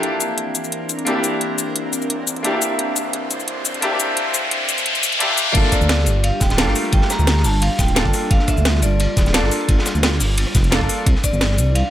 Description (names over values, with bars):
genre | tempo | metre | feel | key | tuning
liquid drum and bass | 174 BPM | 4/4 | swing 54% on 16ths | G dorian | A4 = 440 Hz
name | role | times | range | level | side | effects
bright grand piano | accompaniment | 0.0-11.1 s | A3 to A4 | -23 LUFS | left 1 dB | vintage 12-bit sampler grit, digital delay
airy breathy pad | sustained chords | 0.0-11.9 s | E3 to C5 | -28 LUFS | right 1 dB | chorus, sidechain pumping
drum and bass drum kit | drums | 0.0-11.8 s | crash cymbal, hi-hat, rim click, shaker, snare drum | -21 LUFS | left 1 dB | none
riser | sound effects | 2.0-5.5 s | none | -23 LUFS | left 1 dB | none
dark detuned saw bass | bass | 5.5-11.8 s | D1 to D2 | -18 LUFS | equal | none
crunchy breakbeat drum kit | drums | 5.5-11.8 s | hi-hat, ride cymbal, snare drum | -26 LUFS | equal | high-pass filter on cymbals, high-pass filter on hats, high-pass filter on snare, high-pass filter on room
electronic kick drum | drums | 5.5-11.3 s | none | -18 LUFS | equal | none
vibraphone with hard mallets | melody | 5.7-11.8 s | D5 to Bb5 | -25 LUFS | equal | digital delay
room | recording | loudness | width
light reverb, studio reverb | high-pass filter | -16 LUFS | side -12 dB against mid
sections
0.0-5.5 A section; 5.5-11.9 B section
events
build-up 0.0-5.5; filter sweep 0.0-5.5; riser 2.0-5.5; drop 5.5-11.9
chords
0.0 C9; 5.5 Gm9; 11.1 Cadd9